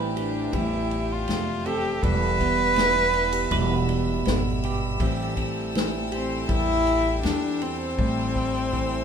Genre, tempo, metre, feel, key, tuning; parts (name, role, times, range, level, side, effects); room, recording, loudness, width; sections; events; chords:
acoustic folk-pop ballad; 80 BPM; 4/4; straight; A minor; A4 = 441 Hz
fingerpicked plugged-in steel-string acoustic guitar; accompaniment; 0.0-9.0 s; E2 to G4; -28 LUFS; right 3 dB
rich chamber string section; sustained chords; 0.0-9.0 s; G4 to E6; -34 LUFS; left 1 dB
clean electric guitar; arpeggios; 0.0-5.3 s; G4 to B4; -33 LUFS; right 5 dB; tremolo
upright bass; bass; 0.0-9.0 s; E1 to E2; -29 LUFS; left 1 dB
warm cello; melody; 0.2-9.0 s; C4 to B4; -25 LUFS; equal
unplugged drum kit; drums; 0.2-8.9 s; kick drum, ride cymbal, snare drum; -31 LUFS; left 1 dB
moderate studio reverb, RT60 0.8 s; minimal, uncompressed stereo recording; -22 LUFS; side -7 dB against mid
0.0-9.0 A section
drum fill 8.0-9.0
0.0 Am7; 2.0 Em; 5.0 Am7